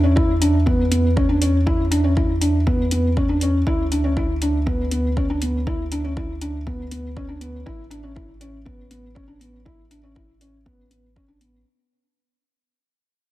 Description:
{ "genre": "piano and strings electronica", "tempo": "120 BPM", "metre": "4/4", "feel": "straight", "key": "unclear", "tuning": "A4 = 440 Hz", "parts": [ { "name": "felt-muted upright piano", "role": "riff", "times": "0.0-11.6 s", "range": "B3 to E4", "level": "-22 LUFS", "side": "equal", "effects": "digital delay" }, { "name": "warm sub bass", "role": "bass", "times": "0.0-11.6 s", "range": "A1 to E2", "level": "-22 LUFS", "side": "equal", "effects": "sidechain pumping" }, { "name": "electronic kick drum", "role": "drums", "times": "0.2-11.3 s", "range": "none", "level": "-24 LUFS", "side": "equal", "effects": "none" }, { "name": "electronic hi-hat", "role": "drums", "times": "0.4-11.5 s", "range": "none", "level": "-29 LUFS", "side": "left 2 dB", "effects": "none" } ], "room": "moderate scoring stage reverb, RT60 1.6 s, digital ambience", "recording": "none", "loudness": "-18 LUFS", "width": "side -15 dB against mid", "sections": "0.0-11.7 A section", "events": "fade-out 0.0-11.7", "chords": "0.0 E5; 3.7 Bmadd11/D; 7.7 Aadd9", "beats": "0.16 0.66 1.16 | 1.66 2.16 2.66 3.16 | 3.66 4.16 4.66 5.16 | 5.66 6.16 6.66 7.16 | 7.66 8.16 8.66 9.16 | 9.66 10.16 10.66 11.16" }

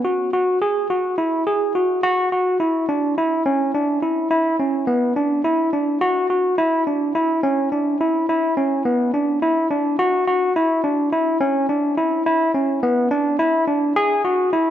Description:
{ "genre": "progressive instrumental, progressive", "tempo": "106 BPM", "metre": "7/4", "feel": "straight", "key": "unclear", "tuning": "A4 = 435 Hz", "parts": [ { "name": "barky tine electric piano", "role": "solo", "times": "0.0-14.7 s", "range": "B3 to G#4", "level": "-17 LUFS", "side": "equal", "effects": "none" } ], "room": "wet plate reverb, RT60 2.8 s", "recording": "dreamy mix soaked in reverb", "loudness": "-17 LUFS", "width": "side -10 dB against mid", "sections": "0.0-2.0 A section; 2.0-14.7 B section", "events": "none", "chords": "none", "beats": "0.33 0.90 1.47 | 2.04 2.61 3.17 3.74 4.31 4.88 5.45 | 6.02 6.58 7.15 7.72 8.29 8.86 9.42 | 9.99 10.56 11.13 11.69 12.26 12.83 13.39 | 13.96 14.53" }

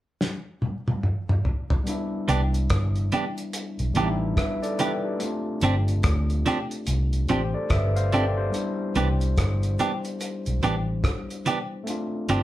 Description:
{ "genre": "lovers rock reggae", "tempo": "72 BPM", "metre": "4/4", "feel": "swing 62% on 16ths", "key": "C major", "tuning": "A4 = 441 Hz", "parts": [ { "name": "cloth-damped thuddy drum kit", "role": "drums", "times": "0.2-12.4 s", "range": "hi-hat, kick drum, rim click, snare drum, toms", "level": "-26 LUFS", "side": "equal", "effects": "none" }, { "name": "overdriven tine electric piano", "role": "accompaniment", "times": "1.8-12.4 s", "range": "G3 to F5", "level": "-29 LUFS", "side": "left 2 dB", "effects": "none" }, { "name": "clean electric guitar", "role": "stabs", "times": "2.3-12.4 s", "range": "E3 to G4", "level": "-24 LUFS", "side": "right 3 dB", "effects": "none" }, { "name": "vintage muted fingered electric bass", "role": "bass", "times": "2.3-12.4 s", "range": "G1 to D2", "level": "-24 LUFS", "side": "equal", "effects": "none" } ], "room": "moderate studio reverb, RT60 0.5 s", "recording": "band playing live in one room, lossy compression artefacts", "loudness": "-23 LUFS", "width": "side -14 dB against mid", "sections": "0.0-1.9 A section; 1.9-12.4 B section", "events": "drum fill 0.2-1.9", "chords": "0.0 N.C.; 1.9 Cmaj9 (rootless); 5.2 G7sus4; 8.5 Cmaj9; 11.9 G7sus4", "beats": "0.20 1.03 | 1.87 2.70 3.53 4.37 | 5.20 6.03 6.87 7.70 | 8.53 9.37 10.20 11.03 | 11.87" }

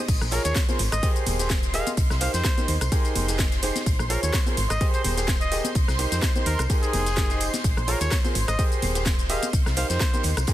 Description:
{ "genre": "piano house", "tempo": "127 BPM", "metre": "4/4", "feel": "swing 55% on 16ths", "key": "unclear", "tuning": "A4 = 440 Hz", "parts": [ { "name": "analog string pad", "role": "sustained chords", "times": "0.0-10.5 s", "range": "C5 to C6", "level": "-34 LUFS", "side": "equal", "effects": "ensemble chorus, sidechain pumping" }, { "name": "solid FM bass", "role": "bass", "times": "0.1-10.5 s", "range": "Eb1 to F2", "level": "-26 LUFS", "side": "equal", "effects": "sidechain pumping" }, { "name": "electronic kick drum", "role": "drums", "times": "0.1-10.5 s", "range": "none", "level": "-24 LUFS", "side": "equal", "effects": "studio reverb" }, { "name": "house drum kit", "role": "drums", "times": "0.1-10.5 s", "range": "crash cymbal, hi-hat, rim click, shaker, snare drum", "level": "-29 LUFS", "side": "equal", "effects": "studio reverb" }, { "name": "oversized low-tuned drum kit", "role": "drums", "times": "0.1-10.5 s", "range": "hi-hat, snare drum", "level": "-36 LUFS", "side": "right 2 dB", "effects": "sidechain pumping on hats, high-pass filter on hats, studio reverb, high-pass filter on snare, high-pass filter on room" }, { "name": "tambourine and congas", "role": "percussion", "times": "0.1-10.5 s", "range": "none", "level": "-36 LUFS", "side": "left 4 dB", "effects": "none" }, { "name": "breathy trumpet", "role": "melody", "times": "0.3-10.2 s", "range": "Ab4 to F5", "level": "-31 LUFS", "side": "equal", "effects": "ping-pong delay" }, { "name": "warm upright piano", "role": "riff", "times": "0.3-10.5 s", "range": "Eb4 to Eb5", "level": "-30 LUFS", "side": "right 2 dB", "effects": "vintage 12-bit sampler grit, sidechain pumping, ping-pong delay" } ], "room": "studio ambience", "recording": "dense, heavily limited modern master", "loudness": "-21 LUFS", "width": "side -14 dB against mid", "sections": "0.0-10.5 A section", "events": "none", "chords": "0.1 Bbm7; 0.8 Abmaj9; 2.0 Cm7; 2.9 Fm11; 3.9 Bbm7; 4.6 Abmaj9; 5.8 Cm7; 6.7 Fm11; 7.6 Bbm7; 8.4 Abmaj9; 9.5 Cm7", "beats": "| 0.08 0.56 1.03 1.50 | 1.97 2.45 2.92 3.39 | 3.86 4.34 4.81 5.28 | 5.75 6.23 6.70 7.17 | 7.64 8.12 8.59 9.06 | 9.53 10.01 10.48" }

